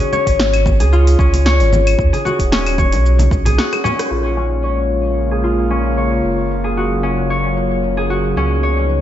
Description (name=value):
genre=organic downtempo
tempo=113 BPM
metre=4/4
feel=swing 53% on 16ths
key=unclear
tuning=A4 = 439 Hz
part: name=concert harp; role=arpeggios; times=0.0-9.0 s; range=Db4 to Db5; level=-18 LUFS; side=left 2 dB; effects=low-pass filter, diffuse ambient delay
part: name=deep house drum kit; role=drums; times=0.0-9.0 s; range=claves, hi-hat, rim click, shaker, snare drum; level=-22 LUFS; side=equal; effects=overdrive, low-pass filter on perc, low-pass filter on hats, low-pass filter on snare
part: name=congas and bongos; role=percussion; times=0.0-4.0 s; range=none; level=-24 LUFS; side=left 1 dB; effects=none
part: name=warm sub bass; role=bass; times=0.3-9.0 s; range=Eb1 to Eb2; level=-16 LUFS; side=right 1 dB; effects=sidechain pumping
part: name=electronic kick drum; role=drums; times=0.3-3.4 s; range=none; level=-18 LUFS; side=right 1 dB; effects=overdrive
part: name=airy breathy pad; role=sustained chords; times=4.4-9.0 s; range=Db3 to F4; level=-21 LUFS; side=left 1 dB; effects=chorus, sidechain pumping
room=moderate plate reverb, RT60 1.6 s, digital ambience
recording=dreamy mix soaked in reverb, nothing above 7.8 kHz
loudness=-13 LUFS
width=side -11 dB against mid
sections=0.0-4.1 A section; 4.1-9.0 B section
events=filter sweep on harp 0.0-4.1, 4.1-9.0; break 3.6-4.1; drum fill 3.6-4.1; band accent 4.0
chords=0.0 Db; 2.0 Ebm7; 3.1 Cb5; 4.1 Bbm7; 6.2 Gbmaj7; 8.4 Db9